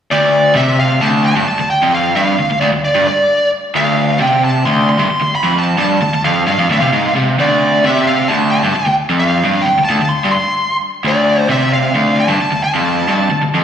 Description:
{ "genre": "rock", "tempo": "132 BPM", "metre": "4/4", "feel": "straight", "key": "D minor", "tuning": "A4 = 436 Hz", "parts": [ { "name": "smooth overdriven lead guitar", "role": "melody", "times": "0.1-13.6 s", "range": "D5 to C6", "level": "-15 LUFS", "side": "equal", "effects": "slapback echo, digital delay" }, { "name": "overdriven electric guitar", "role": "riff", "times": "0.1-13.6 s", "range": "D2 to C3", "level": "-14 LUFS", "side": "equal", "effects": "slapback echo" } ], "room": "moderate lush hall reverb, RT60 2.5 s", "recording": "live gig heard through the venue's PA, recital hall reverb", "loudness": "-11 LUFS", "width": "side -8 dB against mid", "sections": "0.1-13.6 A section", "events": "none", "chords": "0.1 Dm" }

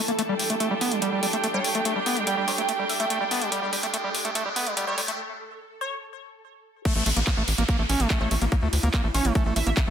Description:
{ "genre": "psychedelic trance", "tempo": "144 BPM", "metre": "4/4", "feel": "straight", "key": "unclear", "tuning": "A4 = 441 Hz", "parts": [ { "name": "swarming drone", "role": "sustained chords", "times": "0.0-9.9 s", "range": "E4 to A4", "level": "-35 LUFS", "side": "right 1 dB", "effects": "built-in reverb, sidechain pumping" }, { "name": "riser and downlifter", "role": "sound effects", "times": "0.0-9.9 s", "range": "none", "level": "-34 LUFS", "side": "equal", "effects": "none" }, { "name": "clear studio string section", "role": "texture", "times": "0.0-5.2 s", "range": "D4 to A5", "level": "-29 LUFS", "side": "right 5 dB", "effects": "sidechain pumping" }, { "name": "overdriven acid bass", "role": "riff", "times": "0.1-9.9 s", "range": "G3 to C#4", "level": "-28 LUFS", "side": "moving between left 5 dB and right 4 dB", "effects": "distortion, auto-pan, cassette tape, sidechain pumping, ping-pong delay" }, { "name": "big-room dance drum kit", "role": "drums", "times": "0.1-9.9 s", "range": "crash cymbal, handclaps, hi-hat, ride cymbal", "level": "-29 LUFS", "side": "equal", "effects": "high-pass filter on hats, high-pass filter on cymbals, high-pass filter on snare, high-pass filter on room" }, { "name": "resonant blip pluck", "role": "second line", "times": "1.5-9.7 s", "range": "C#5 to A5", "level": "-34 LUFS", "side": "left 2 dB", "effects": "phaser, cassette tape, sidechain pumping, high-pass filter, ping-pong delay" }, { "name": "electronic kick drum", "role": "drums", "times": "6.9-9.9 s", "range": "none", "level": "-23 LUFS", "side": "equal", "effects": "overdrive" }, { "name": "tight sequencer bass", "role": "bass", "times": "7.0-9.9 s", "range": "A1 to D2", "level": "-24 LUFS", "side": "equal", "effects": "none" } ], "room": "light reverb", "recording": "high-pass filter", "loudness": "-22 LUFS", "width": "side -8 dB against mid", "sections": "0.0-6.9 A section; 6.9-9.9 B section", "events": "build-up 0.0-6.9; riser 0.0-5.2; filter sweep on acid bass 0.0-6.9; break 5.2-6.9; drop 6.9-9.9", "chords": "0.2 G5; 6.9 A5" }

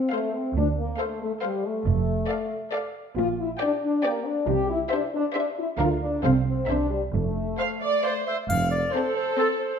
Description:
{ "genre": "cinematic, playful, whimsical film cue", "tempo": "137 BPM", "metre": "3/4", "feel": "straight", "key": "F major", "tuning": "A4 = 439 Hz", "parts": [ { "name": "dark French horn section", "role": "sustained chords", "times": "0.0-8.2 s", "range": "G3 to G4", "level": "-26 LUFS", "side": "left 3 dB", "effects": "none" }, { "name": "warm studio violin section", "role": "melody", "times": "0.1-9.7 s", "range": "C5 to G5", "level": "-35 LUFS", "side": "left 4 dB", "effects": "none" }, { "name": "warm studio violin section", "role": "second line", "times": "0.1-9.7 s", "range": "C4 to D5", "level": "-32 LUFS", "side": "left 2 dB", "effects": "none" }, { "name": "warm studio viola section", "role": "accompaniment", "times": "0.1-9.8 s", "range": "G4 to F5", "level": "-30 LUFS", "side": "right 4 dB", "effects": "none" }, { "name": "rich studio double bass section", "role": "bass", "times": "0.5-8.8 s", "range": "F1 to D2", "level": "-28 LUFS", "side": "right 5 dB", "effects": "none" }, { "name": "warm studio cello section", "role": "bass", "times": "0.6-8.8 s", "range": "D2 to D3", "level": "-28 LUFS", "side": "right 5 dB", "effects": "none" }, { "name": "warm clarinet", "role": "second line", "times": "8.0-9.8 s", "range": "A4 to F5", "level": "-26 LUFS", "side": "left 1 dB", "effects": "none" }, { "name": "mellow tuba", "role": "bass", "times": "8.5-8.8 s", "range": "F1", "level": "-29 LUFS", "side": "right 5 dB", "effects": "none" }, { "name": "triangle", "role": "percussion", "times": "8.5-9.3 s", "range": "none", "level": "-41 LUFS", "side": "left 1 dB", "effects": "none" } ], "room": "wet recital hall reverb, RT60 1.4 s", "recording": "none", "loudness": "-23 LUFS", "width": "side -7 dB against mid", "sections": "0.0-8.5 A section; 8.5-9.8 A section", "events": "none", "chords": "0.0 F/A; 0.6 Dm7; 1.9 Dm/F; 3.2 Gm/Bb; 4.5 C; 5.8 Bb/D; 6.2 F/C; 6.7 C9; 7.1 F" }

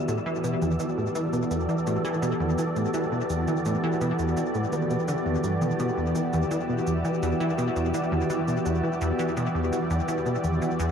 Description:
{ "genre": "ambient, sequencer-driven space music", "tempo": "84 BPM", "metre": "4/4", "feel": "straight", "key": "E minor", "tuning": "A4 = 440 Hz", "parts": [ { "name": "sweeping resonant pad", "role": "sustained chords", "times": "0.0-10.9 s", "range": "E3 to D5", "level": "-27 LUFS", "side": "equal", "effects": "chorus" }, { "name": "wind-like tuned noise texture", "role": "texture", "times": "0.0-10.9 s", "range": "E4 to E5", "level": "-35 LUFS", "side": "right 1 dB", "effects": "built-in reverb" }, { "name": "plucky analog bass", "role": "riff", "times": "0.1-10.9 s", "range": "E2 to B3", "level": "-28 LUFS", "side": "equal", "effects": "wide subtle chorus, ping-pong delay" }, { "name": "electronic shaker and toms", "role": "percussion", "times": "0.1-10.9 s", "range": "none", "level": "-35 LUFS", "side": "equal", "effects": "ping-pong delay" } ], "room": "wet spring reverb, RT60 2.6 s", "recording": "echo-heavy mix, cassette tape", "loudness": "-24 LUFS", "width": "side -7 dB against mid", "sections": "0.0-10.9 A section", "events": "none", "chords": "0.0 Em7" }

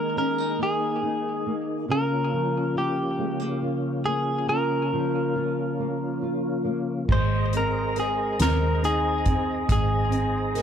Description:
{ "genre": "six-eight pop ballad", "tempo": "46 BPM (dotted quarters)", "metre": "6/8", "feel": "straight", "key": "unclear", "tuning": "A4 = 440 Hz", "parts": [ { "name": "direct-recorded clean electric guitar", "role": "melody", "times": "0.0-10.6 s", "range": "G4 to C5", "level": "-27 LUFS", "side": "equal", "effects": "ping-pong delay" }, { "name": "nylon-string guitar", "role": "accompaniment", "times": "0.0-10.6 s", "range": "Db3 to Bb4", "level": "-28 LUFS", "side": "equal", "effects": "double-tracked left and right" }, { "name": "tonewheel organ", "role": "sustained chords", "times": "0.0-10.6 s", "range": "Db3 to Bb5", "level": "-31 LUFS", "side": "left 1 dB", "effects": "chorus vibrato, slow rotary speaker" }, { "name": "vintage muted fingered electric bass", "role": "bass", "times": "7.1-10.6 s", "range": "Ab1 to Eb2", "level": "-26 LUFS", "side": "equal", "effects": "none" }, { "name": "soft-mallet drum kit", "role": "drums", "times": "7.1-10.6 s", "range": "crash cymbal, hi-hat, kick drum, snare drum", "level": "-27 LUFS", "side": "equal", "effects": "none" } ], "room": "small room ambience", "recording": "dark, warm production", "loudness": "-22 LUFS", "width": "side -8 dB against mid", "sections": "0.0-7.1 A section; 7.1-10.6 B section", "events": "none", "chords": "0.0 Ebsus4; 1.9 Bbm/Db; 7.1 Abadd9" }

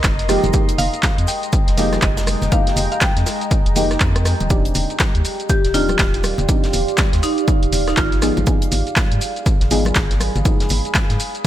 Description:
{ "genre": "deep house", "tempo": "121 BPM", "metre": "4/4", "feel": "swing 61% on 16ths", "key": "Eb major", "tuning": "A4 = 440 Hz", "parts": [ { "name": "deep mellow chord stab", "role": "stabs", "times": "0.0-11.5 s", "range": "Eb3 to Ab4", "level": "-23 LUFS", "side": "equal", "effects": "chorus, sidechain pumping, dub echo" }, { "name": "round analog bass", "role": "bass", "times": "0.0-11.2 s", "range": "Eb1 to Ab2", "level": "-21 LUFS", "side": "equal", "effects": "tube saturation, sidechain pumping" }, { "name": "electronic kick drum", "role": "drums", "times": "0.0-11.5 s", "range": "none", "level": "-18 LUFS", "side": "equal", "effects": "none" }, { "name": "modern studio drum kit", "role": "drums", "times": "0.0-11.3 s", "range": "hi-hat, shaker, snare drum", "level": "-32 LUFS", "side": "right 1 dB", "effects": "sidechain pumping on hats, high-pass filter on hats, high-pass filter on snare, sidechain pumping on perc, high-pass filter on perc, high-pass filter on room" }, { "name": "punchy analog drum machine", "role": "drums", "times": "0.0-11.5 s", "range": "handclaps, hi-hat, rim click, shaker", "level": "-22 LUFS", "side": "equal", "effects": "none" }, { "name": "deep dark ambient pad", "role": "texture", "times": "0.0-11.5 s", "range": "Ab3 to C6", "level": "-26 LUFS", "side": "right 1 dB", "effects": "chorus, built-in reverb, sidechain pumping" }, { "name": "congas", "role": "percussion", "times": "0.4-11.1 s", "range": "none", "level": "-27 LUFS", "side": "left 2 dB", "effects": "none" }, { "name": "mallet-like synth pluck", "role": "melody", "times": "0.8-3.7 s", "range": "Eb5 to G5", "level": "-27 LUFS", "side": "left 1 dB", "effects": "chorus, dub echo" }, { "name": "marimba with hard mallets", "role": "melody", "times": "5.5-8.3 s", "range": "Eb4 to G4", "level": "-24 LUFS", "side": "right 1 dB", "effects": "digital delay" } ], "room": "light reverb, small room ambience", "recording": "none", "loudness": "-15 LUFS", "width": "side -12 dB against mid", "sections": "0.0-11.5 A section", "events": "none", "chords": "0.3 Fm11; 4.5 Ebmaj13; 8.2 Abm6" }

